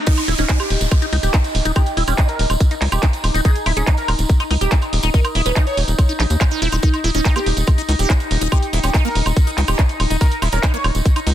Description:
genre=psychedelic trance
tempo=142 BPM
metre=4/4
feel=straight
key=unclear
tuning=A4 = 443 Hz
part: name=overtone-sweeping drone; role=sustained chords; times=0.0-11.3 s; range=Eb4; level=-27 LUFS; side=left 1 dB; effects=chorus, built-in reverb, sidechain pumping
part: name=riser and downlifter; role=sound effects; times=0.0-3.5 s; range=none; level=-28 LUFS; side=equal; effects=none
part: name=wide unison lead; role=melody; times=0.1-10.9 s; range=Eb4 to Db5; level=-26 LUFS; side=equal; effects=phaser, sidechain pumping, ping-pong delay
part: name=liquid acid bass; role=riff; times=0.1-11.3 s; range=Bb3 to G4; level=-25 LUFS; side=moving between left 4 dB and right 5 dB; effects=phaser, auto-pan, sidechain pumping, ping-pong delay
part: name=drum and bass drum kit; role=drums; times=0.1-11.3 s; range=crash cymbal, handclaps, hi-hat, woodblock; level=-24 LUFS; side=right 1 dB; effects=none
part: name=electronic kick drum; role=drums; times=0.1-11.1 s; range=none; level=-15 LUFS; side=equal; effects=none
part: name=tambourine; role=percussion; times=0.1-11.2 s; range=none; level=-32 LUFS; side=right 5 dB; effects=none
part: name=tight sequencer bass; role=bass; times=0.3-11.3 s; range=Eb1 to Eb2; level=-18 LUFS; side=equal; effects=none
room=little or no reverb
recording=dense, heavily limited modern master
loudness=-15 LUFS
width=side -12 dB against mid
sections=0.1-11.3 A section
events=drop 0.1-11.3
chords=0.1 Eb5

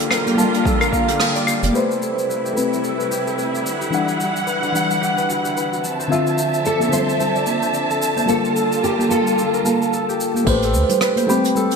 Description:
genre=sunset chillout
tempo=110 BPM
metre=4/4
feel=swing 57% on 16ths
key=A minor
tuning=A4 = 440 Hz
part: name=mellow FM electric piano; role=accompaniment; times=0.0-11.8 s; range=D3 to B5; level=-21 LUFS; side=moving between left 5 dB and right 2 dB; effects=chorus, auto-pan, digital delay
part: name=warm studio string section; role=sustained chords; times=0.0-10.4 s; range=C3 to A5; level=-23 LUFS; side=right 2 dB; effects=none
part: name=concert harp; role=arpeggios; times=0.0-11.8 s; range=F#4 to A5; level=-25 LUFS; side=left 2 dB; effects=low-pass filter, digital delay
part: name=jazz brush drum kit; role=drums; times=0.0-11.8 s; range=claves, crash cymbal, hi-hat, rim click, shaker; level=-26 LUFS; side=equal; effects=none
part: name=congas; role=percussion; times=0.3-1.7, 6.8-11.7 s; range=none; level=-25 LUFS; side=right 4 dB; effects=none
part: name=electronic kick drum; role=drums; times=0.7-1.1, 10.5-10.6 s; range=none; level=-22 LUFS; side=equal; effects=none
part: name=round analog bass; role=bass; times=1.6-1.7, 10.5-10.8 s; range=F1 to D2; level=-20 LUFS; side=equal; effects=none
part: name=nylon-string guitar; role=melody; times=6.1-10.2 s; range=F4 to C5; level=-23 LUFS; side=equal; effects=ensemble chorus, digital delay
room=wet plate reverb, RT60 2.3 s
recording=bright 1980s-style digital production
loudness=-16 LUFS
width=side -5 dB against mid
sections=0.0-1.7 A section; 1.7-10.5 B section; 10.5-11.8 C section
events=filter sweep on FM electric piano 0.0-1.7; kick drops out 1.2-1.7; band accent 1.2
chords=0.0 Gm9; 1.7 Am9; 3.7 Em9; 5.8 Dm9; 8.3 Gm9; 10.5 Am9

